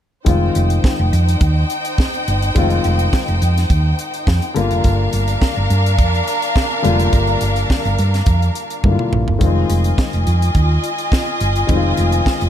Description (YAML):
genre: disco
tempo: 105 BPM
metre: 4/4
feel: straight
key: F dorian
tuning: A4 = 435 Hz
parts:
  - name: warm baby grand piano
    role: accompaniment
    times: 0.2-12.5 s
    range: D3 to F4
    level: -22 LUFS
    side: left 5 dB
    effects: none
  - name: clear studio string section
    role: second line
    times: 0.3-12.5 s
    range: D4 to Ab5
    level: -21 LUFS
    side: equal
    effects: none
  - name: hollow-body short-scale fingered electric bass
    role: bass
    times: 0.3-12.5 s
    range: F1 to G2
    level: -16 LUFS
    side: right 1 dB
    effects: none
  - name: tight funk drum kit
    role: drums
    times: 0.3-12.5 s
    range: hi-hat, kick drum, snare drum, toms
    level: -18 LUFS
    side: right 1 dB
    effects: none
room: light reverb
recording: none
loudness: -14 LUFS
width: side -10 dB against mid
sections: 0.3-12.5 A section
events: drum fill 8.8-9.4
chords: 0.3 Fm7; 4.6 Gm7; 9.4 Fm7